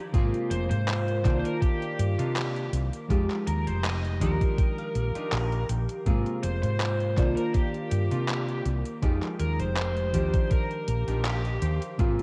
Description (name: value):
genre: vaporwave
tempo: 81 BPM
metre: 4/4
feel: swing 54% on 16ths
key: Eb major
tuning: A4 = 439 Hz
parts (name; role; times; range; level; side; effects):
- mellow FM electric piano; accompaniment; 0.0-12.2 s; C3 to D5; -35 LUFS; equal; analog chorus, vintage 12-bit sampler grit, analog delay
- warbly tape-like pad; sustained chords; 0.0-12.2 s; Ab3 to Eb6; -44 LUFS; equal; chorus, built-in reverb
- semi-hollow electric guitar; riff; 0.1-12.2 s; Ab3 to Bb5; -40 LUFS; equal; lush chorus, analog delay
- woody fretless electric bass; bass; 0.1-12.2 s; F1 to C3; -30 LUFS; equal; none
- detuned 8-bit digital drum machine; drums; 0.1-12.2 s; handclaps, hi-hat; -38 LUFS; equal; overdrive, vintage 12-bit sampler grit
- electronic kick drum; drums; 0.1-12.2 s; none; -27 LUFS; equal; vintage 12-bit sampler grit
- high-gain lead guitar; melody; 0.5-11.8 s; G4 to Eb5; -37 LUFS; equal; distortion, tape echo
room: moderate plate reverb, RT60 2.1 s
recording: dreamy mix soaked in reverb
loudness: -27 LUFS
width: mono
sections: 0.0-12.2 A section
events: clean electric guitar fill 3.8-6.1, 10.5-12.0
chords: 0.1 Ab69; 1.2 Cm11; 3.1 Fm9; 4.2 Ebmaj9; 6.1 Ab69; 7.2 Cm11; 9.0 Fm9; 10.1 Ebmaj9